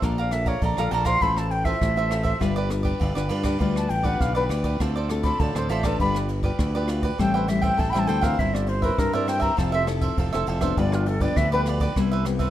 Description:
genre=samba and choro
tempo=101 BPM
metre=4/4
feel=straight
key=unclear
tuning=A4 = 441 Hz
part: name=cavaquinho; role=accompaniment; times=0.0-12.5 s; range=E4 to Bb5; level=-29 LUFS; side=right 6 dB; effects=none
part: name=nylon-string guitar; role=accompaniment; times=0.0-12.5 s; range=G2 to C5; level=-28 LUFS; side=left 5 dB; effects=none
part: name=growling fingered electric bass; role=bass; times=0.0-12.5 s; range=F1 to G2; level=-26 LUFS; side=equal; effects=overdrive
part: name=jazz brush drum kit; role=drums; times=0.0-12.5 s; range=kick drum, ride cymbal, rim click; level=-29 LUFS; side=equal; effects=none
part: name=silver concert flute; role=second line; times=0.2-11.6 s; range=F4 to C6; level=-26 LUFS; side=left 1 dB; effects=none
room=light reverb, small room ambience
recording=rough home demo mix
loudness=-21 LUFS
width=side -12 dB against mid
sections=0.0-12.5 A section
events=flute solo 0.0-12.5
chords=0.0 Bbmaj7; 1.2 Fmaj7/A; 2.4 G7; 4.8 Dm7; 6.0 G7; 7.2 Am7; 8.4 C7/G; 9.6 Fmaj7; 10.8 G7; 12.0 Cmaj7

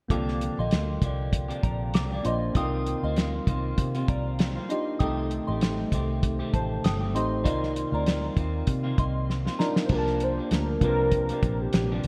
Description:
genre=indie pop, bedroom pop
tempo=98 BPM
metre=4/4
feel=swing 55% on 16ths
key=unclear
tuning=A4 = 439 Hz
part: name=soft synth bell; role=second line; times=0.1-9.8 s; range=C5 to Eb6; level=-37 LUFS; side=equal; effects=phaser, subtle chorus, digital delay
part: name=electric guitar at the edge of break-up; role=accompaniment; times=0.1-12.1 s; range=C3 to G4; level=-36 LUFS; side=equal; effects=lush chorus, vibrato effect
part: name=tine electric piano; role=accompaniment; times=0.1-12.1 s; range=D3 to A5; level=-35 LUFS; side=equal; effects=none
part: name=vintage muted fingered electric bass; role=bass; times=0.1-12.1 s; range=G1 to C3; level=-32 LUFS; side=equal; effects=none
part: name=cloth-damped thuddy drum kit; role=drums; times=0.1-12.1 s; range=crash cymbal, hi-hat, kick drum, snare drum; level=-29 LUFS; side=equal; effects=gated reverb
part: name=warm velvety synth lead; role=melody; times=9.9-12.0 s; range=G4 to C5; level=-30 LUFS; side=equal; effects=analog chorus
room=moderate plate reverb, RT60 1.9 s, small room ambience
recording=bright 1980s-style digital production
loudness=-27 LUFS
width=mono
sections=0.1-9.9 A section; 9.9-12.1 B section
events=drum fill 9.3-9.9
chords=0.1 Gm7; 2.6 Cm11; 5.0 Am7b5; 7.5 Cm11; 9.9 Gm7/C

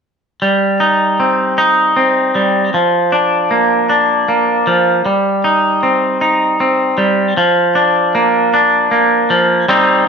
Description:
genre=rock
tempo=52 BPM (dotted quarters)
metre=6/8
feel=straight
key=C minor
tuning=A4 = 440 Hz
part: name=twangy electric guitar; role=solo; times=0.4-10.1 s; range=F3 to Eb4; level=-10 LUFS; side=equal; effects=spring reverb
room=moderate small room reverb, RT60 0.5 s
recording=none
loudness=-11 LUFS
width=side -6 dB against mid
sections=0.4-9.7 A section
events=none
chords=0.4 Cm; 2.7 Bb; 5.1 Cm; 7.4 Bb

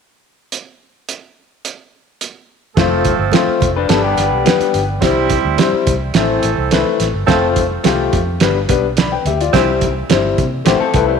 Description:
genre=uptempo 1960s-style soul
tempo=107 BPM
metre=4/4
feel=straight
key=unclear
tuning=A4 = 440 Hz
part: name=cloth-damped thuddy drum kit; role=drums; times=0.5-11.1 s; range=hi-hat, kick drum, snare drum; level=-17 LUFS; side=right 5 dB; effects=none
part: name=warm horn section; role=second line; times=2.8-9.7 s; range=E3 to C5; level=-21 LUFS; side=right 10 dB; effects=tape echo
part: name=warm grand piano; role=accompaniment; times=2.8-11.1 s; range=G3 to B5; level=-16 LUFS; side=left 9 dB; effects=none
part: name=vintage muted fingered electric bass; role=bass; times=2.8-11.2 s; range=F1 to C3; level=-21 LUFS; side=right 1 dB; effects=none
part: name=congas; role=percussion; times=2.8-11.1 s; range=none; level=-30 LUFS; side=right 11 dB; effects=none
part: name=electric guitar through a small old amp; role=riff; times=3.8-4.8, 10.7-11.2 s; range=G3 to B4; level=-19 LUFS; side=left 10 dB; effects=none
room=moderate echo chamber reverb, RT60 1.9 s, small room ambience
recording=1960s-style stereo with parts hard left and right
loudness=-12 LUFS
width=side -6 dB against mid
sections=0.5-2.8 A section; 2.8-7.3 B section; 7.3-11.2 C section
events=none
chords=0.5 N.C.; 2.8 F; 3.9 G; 5.0 C; 6.2 Am; 7.3 F; 8.4 G; 9.5 C; 10.7 Am

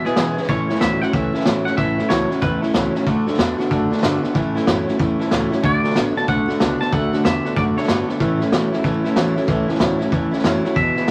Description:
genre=rockabilly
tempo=187 BPM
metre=4/4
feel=swing 64% on 8ths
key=A major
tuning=A4 = 440 Hz
part: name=twangy electric guitar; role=melody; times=0.0-11.1 s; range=G#4 to A5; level=-27 LUFS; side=equal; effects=none
part: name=picked steel-string acoustic guitar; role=accompaniment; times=0.0-11.1 s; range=E2 to F#4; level=-25 LUFS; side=equal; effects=none
part: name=electric guitar through a small old amp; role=riff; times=0.0-11.1 s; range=E2 to B3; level=-24 LUFS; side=equal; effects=none
part: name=upright bass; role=bass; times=0.0-11.1 s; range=A1 to B2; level=-34 LUFS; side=equal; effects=none
part: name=vintage drum kit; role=drums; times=0.1-11.1 s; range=hi-hat, kick drum, snare drum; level=-24 LUFS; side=equal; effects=none
room=moderate studio reverb, RT60 0.7 s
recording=vinyl crackle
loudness=-19 LUFS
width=mono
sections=0.5-11.1 A section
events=none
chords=0.5 A; 3.1 D; 4.4 A; 5.6 D; 8.2 A

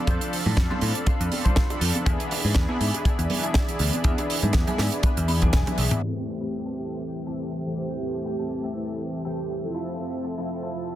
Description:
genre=nu-disco, nu disco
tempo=121 BPM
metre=4/4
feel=swing 55% on 16ths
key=A minor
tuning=A4 = 440 Hz
part: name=mellow synth brass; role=accompaniment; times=0.0-11.0 s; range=E3 to E5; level=-30 LUFS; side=equal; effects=chorus, sidechain pumping, analog delay
part: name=lush unison pad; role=sustained chords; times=0.0-11.0 s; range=C4 to B5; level=-35 LUFS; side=equal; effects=chorus, sidechain pumping
part: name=clean electric guitar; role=riff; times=0.1-10.9 s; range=C4 to B5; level=-36 LUFS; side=left 2 dB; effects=analog chorus, low-pass filter, analog delay
part: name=picked electric bass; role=bass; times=0.1-5.9 s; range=E1 to A2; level=-25 LUFS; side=equal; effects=none
part: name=kick drum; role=drums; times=0.1-5.6 s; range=none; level=-23 LUFS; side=equal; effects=none
part: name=tight funk drum kit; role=drums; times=0.1-11.0 s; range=crash cymbal, hi-hat, shaker, snare drum, toms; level=-29 LUFS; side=right 2 dB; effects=none
part: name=bongos and congas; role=percussion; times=0.1-6.0 s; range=none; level=-33 LUFS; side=right 2 dB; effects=none
part: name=vibraphone with medium hard mallets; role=melody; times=7.8-9.5 s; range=E4 to C5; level=-34 LUFS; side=right 6 dB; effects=tape echo
room=light reverb, small room ambience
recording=dense, heavily limited modern master, low-pass filter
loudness=-23 LUFS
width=side -13 dB against mid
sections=0.0-6.0 A section; 6.0-11.0 B section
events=clean electric guitar fill 5.0-6.0; drum fill 5.5-6.0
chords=0.0 Dm7/F; 2.1 E7; 6.0 Am7; 9.7 Fmaj7

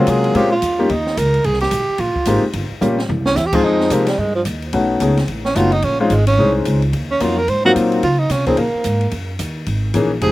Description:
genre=jazz, small-group swing and bop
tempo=219 BPM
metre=4/4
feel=swing 61% on 8ths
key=Ab major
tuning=A4 = 441 Hz
part: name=breathy tenor saxophone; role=second line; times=0.0-10.3 s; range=F3 to C5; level=-18 LUFS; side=right 2 dB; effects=none
part: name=warm concert grand piano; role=accompaniment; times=0.0-10.3 s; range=Fb3 to Ab4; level=-17 LUFS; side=left 2 dB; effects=none
part: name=upright bass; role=bass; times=0.0-10.3 s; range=F1 to Db3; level=-20 LUFS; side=equal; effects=none
part: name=open jazz drum kit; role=drums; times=0.1-10.3 s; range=crash cymbal, hi-hat, kick drum, ride cymbal, snare drum, toms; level=-27 LUFS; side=equal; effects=none
room=little or no reverb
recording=recorded outdoors, with no room sound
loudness=-14 LUFS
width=side -17 dB against mid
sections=0.0-3.6 A section; 3.6-10.3 A section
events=tenor saxophone solo 0.0-10.3; drum fill 2.8-3.4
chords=0.4 Bbm7; 0.9 Eb5; 1.4 Abmaj7; 2.5 Gm7b5; 3.1 C; 3.6 Fm9; 4.7 B9; 5.8 Bbm11; 6.9 Ebm9; 7.5 Ab13; 8.0 Db5; 9.1 Gb13

